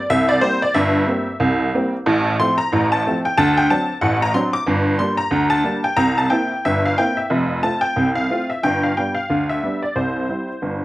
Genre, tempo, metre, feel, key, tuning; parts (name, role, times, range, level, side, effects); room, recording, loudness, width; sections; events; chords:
ragtime piano; 91 BPM; 2/4; swing 58% on 16ths; F major; A4 = 439 Hz
honky-tonk upright piano; solo; 0.0-10.8 s; F1 to D6; -16 LUFS; equal
little or no reverb; recorded outdoors, with no room sound; -16 LUFS; side -17 dB against mid
0.0-10.8 A section
0.0 C7; 2.1 F/A; 3.4 D7; 4.7 Gm; 6.0 C7; 7.3 F; 8.6 G; 10.0 C